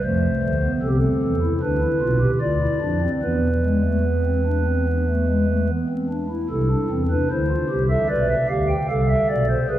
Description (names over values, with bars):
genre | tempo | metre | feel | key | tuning
classical, baroque-style 3-part fugue for pipe organ | 75 BPM | 4/4 | straight | A minor | A4 = 440 Hz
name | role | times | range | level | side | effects
pipe organ, stopped flute | solo | 0.0-9.8 s | B1 to G5 | -18 LUFS | equal | none
room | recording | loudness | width
wet church reverb, RT60 3.8 s | vinyl crackle | -19 LUFS | side -12 dB against mid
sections
0.0-6.5 A section; 6.5-9.8 B section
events
none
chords
0.0 F; 1.6 Bdim; 3.2 E5; 6.5 Am/C; 8.1 Bm7b5